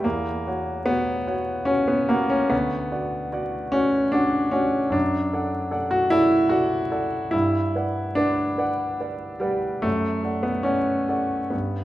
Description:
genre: classical, romantic character piece for solo piano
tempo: 74 BPM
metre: 3/4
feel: uneven beats, rubato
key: D major from 4.9 s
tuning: A4 = 440 Hz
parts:
  - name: warm concert grand piano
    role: solo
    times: 0.0-11.8 s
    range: D2 to F#5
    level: -21 LUFS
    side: equal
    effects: none
room: wet recital hall reverb, RT60 1.4 s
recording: dark, warm production, vinyl crackle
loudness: -21 LUFS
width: side -15 dB against mid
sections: 0.0-11.8 A section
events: none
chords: 0.0 F#7/E; 2.5 Bm/D; 4.9 D/F#; 7.3 Gmaj7; 9.8 D/F#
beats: | 0.04 0.87 1.69 | 2.52 3.33 4.15 | 4.94 5.73 6.52 | 7.33 8.17 9.01 | 9.84 10.65 11.53

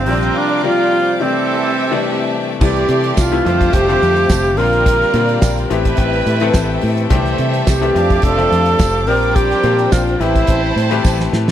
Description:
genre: disco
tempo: 107 BPM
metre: 4/4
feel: straight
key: C mixolydian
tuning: A4 = 440 Hz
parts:
  - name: bright reedy wooden-headed alto flute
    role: melody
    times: 0.0-10.8 s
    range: C4 to Bb4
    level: -16 LUFS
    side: right 2 dB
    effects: slapback echo
  - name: warm symphonic violin section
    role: second line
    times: 0.0-11.5 s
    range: G3 to A5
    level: -23 LUFS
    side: right 2 dB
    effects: none
  - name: bright concert grand piano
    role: accompaniment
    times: 0.0-11.5 s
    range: C3 to E5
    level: -20 LUFS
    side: left 9 dB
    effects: none
  - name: clear studio string section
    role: sustained chords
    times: 0.0-11.5 s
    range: G4 to D6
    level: -26 LUFS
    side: left 2 dB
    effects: none
  - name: fingered electric bass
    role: bass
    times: 0.0-11.5 s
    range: F1 to C3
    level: -18 LUFS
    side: equal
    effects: none
  - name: clear horn section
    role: stabs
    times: 0.1-11.3 s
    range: E3 to D5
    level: -24 LUFS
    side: right 6 dB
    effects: none
  - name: damped 70s drum kit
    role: drums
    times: 0.1-11.5 s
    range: crash cymbal, hi-hat, kick drum, snare drum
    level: -16 LUFS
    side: equal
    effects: none
  - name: tambourine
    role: percussion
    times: 3.2-11.2 s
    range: none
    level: -30 LUFS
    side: right 23 dB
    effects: none
room: little or no reverb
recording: dry, close 1970s-style studio recording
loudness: -12 LUFS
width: side -11 dB against mid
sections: 0.0-2.6 A section; 2.6-11.5 A section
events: grand piano fill 6.3-7.1; drum fill 11.0-11.5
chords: 0.1 Bb69; 1.2 C69; 3.5 F69; 4.6 Bb69; 5.7 Am9; 7.1 C6; 8.0 F69; 9.1 Bb69; 10.2 Am9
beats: | 0.35 0.92 1.48 2.05 | 2.61 3.17 3.73 4.30 | 4.86 5.42 5.99 6.55 | 7.11 7.67 8.23 8.80 | 9.36 9.92 10.48 11.05

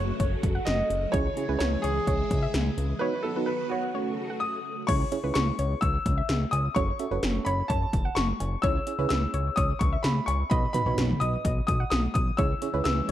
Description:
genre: synth-pop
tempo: 128 BPM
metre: 4/4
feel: straight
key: unclear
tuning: A4 = 440 Hz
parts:
  - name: warm concert grand piano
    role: melody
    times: 0.0-13.1 s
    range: F#4 to E6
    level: -30 LUFS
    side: left 1 dB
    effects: slapback echo
  - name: soft round pluck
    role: second line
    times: 0.0-13.1 s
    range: B4 to F#5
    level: -36 LUFS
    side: left 1 dB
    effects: chorus, slapback echo
  - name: FM electric piano with tremolo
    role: accompaniment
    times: 0.0-13.1 s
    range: A3 to E5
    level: -33 LUFS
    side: right 7 dB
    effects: none
  - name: phased string machine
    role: sustained chords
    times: 0.0-4.9, 12.4-13.1 s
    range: C#3 to F#4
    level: -36 LUFS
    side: equal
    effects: ensemble chorus, phaser
  - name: fat analog bass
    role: bass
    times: 0.0-13.1 s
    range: F#1 to C#2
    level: -28 LUFS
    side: equal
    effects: none
  - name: 80s electronic pad drums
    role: drums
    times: 0.2-13.1 s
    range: cowbell, crash cymbal, hi-hat, kick drum, snare drum, toms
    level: -28 LUFS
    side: equal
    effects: gated reverb on snare and toms, overdrive
room: light reverb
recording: dark, warm production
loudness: -24 LUFS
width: side -12 dB against mid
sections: 0.0-4.9 A section; 4.9-13.1 A section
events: break 3.0-4.9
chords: 0.0 F#m; 1.1 C#m; 3.0 B; 3.9 F#m; 4.9 C#m; 6.8 F#m; 8.6 C#m; 10.5 B; 12.4 C#m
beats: 0.20 0.67 | 1.14 1.60 2.07 2.54 | 3.01 3.48 3.95 4.42 | 4.88 5.35 5.82 6.29 | 6.76 7.23 7.70 8.17 | 8.63 9.10 9.57 10.04 | 10.51 10.98 11.45 11.92 | 12.38 12.85

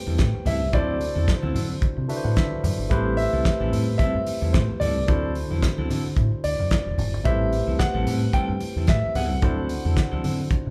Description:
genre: disco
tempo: 110 BPM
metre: 4/4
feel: swing 56% on 16ths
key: A dorian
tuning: A4 = 440 Hz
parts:
  - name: warm grand piano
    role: melody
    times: 0.0-10.7 s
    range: C5 to G5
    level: -31 LUFS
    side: equal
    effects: none
  - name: barky tine electric piano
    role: accompaniment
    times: 0.0-10.7 s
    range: D3 to F#5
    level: -32 LUFS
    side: equal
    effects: overdrive
  - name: clean electric guitar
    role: accompaniment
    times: 0.1-10.7 s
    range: F#3 to A4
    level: -34 LUFS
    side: equal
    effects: none
  - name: deep dub fingered electric bass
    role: bass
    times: 0.1-10.7 s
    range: E1 to D3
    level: -29 LUFS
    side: equal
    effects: none
  - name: congas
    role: percussion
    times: 0.1-10.7 s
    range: none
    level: -34 LUFS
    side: equal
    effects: none
  - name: damped 70s drum kit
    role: drums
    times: 0.2-10.7 s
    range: hi-hat, kick drum, snare drum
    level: -27 LUFS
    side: equal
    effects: none
room: moderate large studio reverb, RT60 0.9 s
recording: band playing live in one room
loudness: -23 LUFS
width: mono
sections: 0.0-10.7 A section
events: tine electric piano fill 1.8-2.9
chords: 0.0 Am7; 0.7 D9; 2.9 Am7; 5.1 D9; 7.3 Am7; 9.4 D9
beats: 0.18 | 0.73 1.27 1.82 2.36 | 2.91 3.45 4.00 4.54 | 5.08 5.62 6.17 6.71 | 7.25 7.80 8.34 8.88 | 9.42 9.97 10.51

